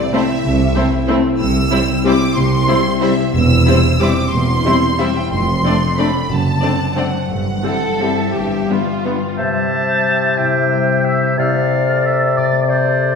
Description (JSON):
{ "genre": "classical, orchestral ballroom waltz", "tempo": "163-203 BPM", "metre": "3/4", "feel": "rubato", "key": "C major", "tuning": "A4 = 442 Hz", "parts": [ { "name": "clear studio violin section", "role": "melody", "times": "0.0-9.1 s", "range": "D5 to E6", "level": "-21 LUFS", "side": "equal", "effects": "none" }, { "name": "concert harp", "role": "arpeggios", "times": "0.0-13.2 s", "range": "E2 to E5", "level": "-20 LUFS", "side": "left 4 dB", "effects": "none" }, { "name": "warm studio violin section", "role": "second line", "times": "0.1-9.4 s", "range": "D4 to D5", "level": "-23 LUFS", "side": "equal", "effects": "none" }, { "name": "clear studio viola section", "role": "accompaniment", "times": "0.1-9.1 s", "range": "G3 to C4", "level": "-22 LUFS", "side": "equal", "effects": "none" }, { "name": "dark French horn section", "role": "sustained chords", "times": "0.1-9.2 s", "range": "G3 to E4", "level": "-24 LUFS", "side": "left 3 dB", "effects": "none" }, { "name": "rich studio cello section", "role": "bass", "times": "0.5-8.6 s", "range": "E2 to C3", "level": "-23 LUFS", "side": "right 3 dB", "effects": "none" }, { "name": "rich studio double bass section", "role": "bass", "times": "0.5-8.6 s", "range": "E1 to C2", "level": "-20 LUFS", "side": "right 2 dB", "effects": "none" }, { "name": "clear oboe", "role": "second line", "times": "9.4-13.2 s", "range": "C5 to A5", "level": "-20 LUFS", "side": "right 3 dB", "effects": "none" }, { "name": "mellow hollow silver concert flute", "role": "second line", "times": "9.4-13.2 s", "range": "G6 to A6", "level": "-23 LUFS", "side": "left 1 dB", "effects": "none" }, { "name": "warm clarinet", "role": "second line", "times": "9.4-13.2 s", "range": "D5 to E5", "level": "-23 LUFS", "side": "equal", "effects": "none" }, { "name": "warm bassoon", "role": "accompaniment", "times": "9.4-13.2 s", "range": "C3", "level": "-18 LUFS", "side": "left 2 dB", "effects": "none" } ], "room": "wet recital hall reverb, RT60 1.5 s", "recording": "heard from further back in the room", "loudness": "-13 LUFS", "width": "side -5 dB against mid", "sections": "0.0-9.4 A section; 9.4-13.2 B section", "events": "none", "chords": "0.0 Am/C; 1.4 C; 3.4 C/E; 5.3 Dm7/F; 6.3 D7/F#; 7.3 C/G; 8.4 G; 9.4 C; 11.4 Dm7/C" }